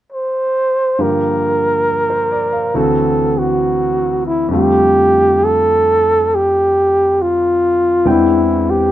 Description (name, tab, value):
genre	jazz ballad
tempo	68 BPM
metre	4/4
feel	swing 68% on 8ths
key	F major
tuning	A4 = 439 Hz
part	breathy flugelhorn	melody	0.1-8.9 s	E4 to C5	-13 LUFS	equal	none
part	warm concert grand piano	accompaniment	1.0-8.9 s	D2 to G5	-18 LUFS	left 1 dB	none
room	light reverb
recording	dark, warm production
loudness	-12 LUFS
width	side -13 dB against mid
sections	1.0-4.5 A section; 4.5-8.9 B section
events	none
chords	0.0 N.C.; 1.0 Gm7; 2.7 D7; 4.5 F69; 8.1 E7alt